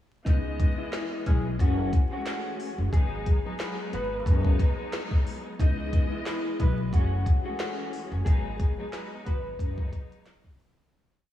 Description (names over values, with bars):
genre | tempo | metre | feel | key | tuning
hip hop, boom-bap hip-hop | 90 BPM | 4/4 | swing 56% on 16ths | unclear | A4 = 440 Hz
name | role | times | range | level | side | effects
mellow electric guitar | melody | 0.2-10.4 s | D#4 to B4 | -36 LUFS | equal | ensemble chorus, high-pass filter, low-pass filter, analog delay
warm studio string section | accompaniment | 0.3-10.8 s | E3 to D#5 | -36 LUFS | left 2 dB | cassette tape, high-pass filter, low-pass filter
upright bass | bass | 0.3-9.9 s | F#1 to C#2 | -29 LUFS | left 1 dB | none
glitchy drum kit | drums | 0.3-10.8 s | handclaps, hi-hat, kick drum, snare drum | -25 LUFS | equal | none
mellow horn section | stabs | 0.9-9.5 s | E3 to B4 | -42 LUFS | right 3 dB | high-pass filter, low-pass filter, analog delay
room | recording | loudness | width
light reverb, studio reverb | vinyl crackle, small room ambience | -25 LUFS | side -12 dB against mid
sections
0.3-10.9 verse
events
fade-out 8.3-10.9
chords
0.3 C#m7; 1.6 F#m9; 2.9 G#m7; 5.6 C#m7; 6.9 F#m9; 8.3 G#m7